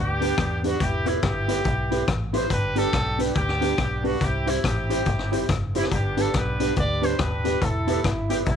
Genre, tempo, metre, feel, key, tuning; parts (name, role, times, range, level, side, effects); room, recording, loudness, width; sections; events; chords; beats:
ska; 141 BPM; 4/4; swing 61% on 8ths; G major; A4 = 442 Hz
clear horn section; melody; 0.0-8.6 s; G3 to D5; -27 LUFS; equal
vintage muted fingered electric bass; bass; 0.0-8.6 s; Eb1 to E2; -28 LUFS; right 1 dB
mellow electric guitar; accompaniment; 0.2-8.4 s; D4 to C5; -29 LUFS; right 15 dB
dark upright piano; stabs; 0.2-8.4 s; B3 to C5; -30 LUFS; left 13 dB
raw garage drum kit; drums; 0.2-8.6 s; hi-hat, kick drum, rim click; -26 LUFS; left 2 dB
small room ambience; 1960s-style stereo with parts hard left and right; -21 LUFS; side -8 dB against mid
0.0-8.6 A section
0.0 G; 0.8 Em; 2.5 G; 4.2 C; 5.9 G; 7.6 Em
0.38 | 0.80 1.23 1.65 2.08 | 2.51 2.93 3.36 3.78 | 4.21 4.64 5.06 5.49 | 5.91 6.34 6.77 7.19 | 7.62 8.04 8.47